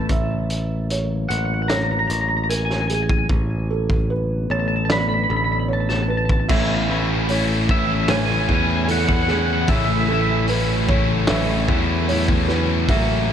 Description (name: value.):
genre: post-rock.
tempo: 75 BPM.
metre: 4/4.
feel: straight.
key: A major.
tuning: A4 = 440 Hz.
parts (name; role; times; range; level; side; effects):
twangy electric guitar; melody; 0.0-10.4 s; E5 to B5; -24 LUFS; equal; wide subtle chorus, digital delay.
deep dark ambient pad; sustained chords; 0.0-13.3 s; C#3 to B3; -30 LUFS; left 2 dB; none.
felt-muted upright piano; arpeggios; 0.0-13.3 s; G#4 to E5; -28 LUFS; right 5 dB; digital delay.
modern bright picked electric bass; bass; 0.0-13.3 s; A1 to E2; -22 LUFS; equal; none.
loose indie drum kit; drums; 0.1-13.1 s; crash cymbal, hi-hat, kick drum, snare drum; -23 LUFS; equal; none.
distorted electric guitar; riff; 6.5-13.3 s; A2 to F#4; -22 LUFS; left 1 dB; overdrive.
room: small room ambience.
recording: dark, warm production.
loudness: -17 LUFS.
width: side -9 dB against mid.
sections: 0.0-6.5 A section; 6.5-13.3 B section.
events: build-up 0.0-6.5.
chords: 0.1 F#7/A; 3.3 Bm7/A; 6.5 Amaj7.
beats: | 0.10 0.90 1.70 2.50 | 3.30 4.10 4.90 5.70 | 6.50 7.30 8.10 8.89 | 9.69 10.49 11.29 12.09 | 12.89.